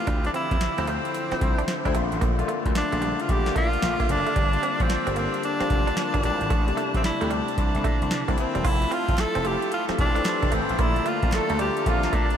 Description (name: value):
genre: R&B, new jack swing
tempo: 112 BPM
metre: 4/4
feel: swing 64% on 16ths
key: unclear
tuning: A4 = 440 Hz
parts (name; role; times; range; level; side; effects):
- bright tenor saxophone; melody; 0.0-12.4 s; C4 to A4; -26 LUFS; equal; diffuse ambient delay
- barky tine electric piano; accompaniment; 0.0-12.4 s; C3 to G4; -30 LUFS; left 5 dB; wide subtle chorus
- direct-recorded clean electric guitar; riff; 0.1-12.2 s; G3 to F4; -33 LUFS; right 6 dB; lush chorus
- gritty slap bass; bass; 0.1-12.2 s; E1 to C3; -30 LUFS; equal; overdrive, tube saturation
- booming analog drum machine; drums; 0.1-12.4 s; crash cymbal, hi-hat, kick drum, snare drum; -26 LUFS; equal; overdrive
- musette accordion; sustained chords; 8.7-12.4 s; F4 to C6; -33 LUFS; equal; stereo widening
- group handclap; percussion; 9.2-11.5 s; none; barely audible; none; none
room: moderate huge ambient reverb, RT60 7.6 s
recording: dreamy mix soaked in reverb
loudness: -21 LUFS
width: side -9 dB against mid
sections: 0.0-8.6 A section; 8.6-12.4 B section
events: none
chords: 0.1 Dm9; 1.9 Bbmaj7; 4.4 Gm7; 6.5 Am7; 7.6 C9; 8.6 Fmaj7; 10.8 Bbmaj7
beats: | 0.07 0.61 1.15 1.68 | 2.22 2.75 3.29 3.82 | 4.36 4.89 5.43 5.97 | 6.50 7.04 7.57 8.11 | 8.64 9.18 9.72 10.25 | 10.79 11.32 11.86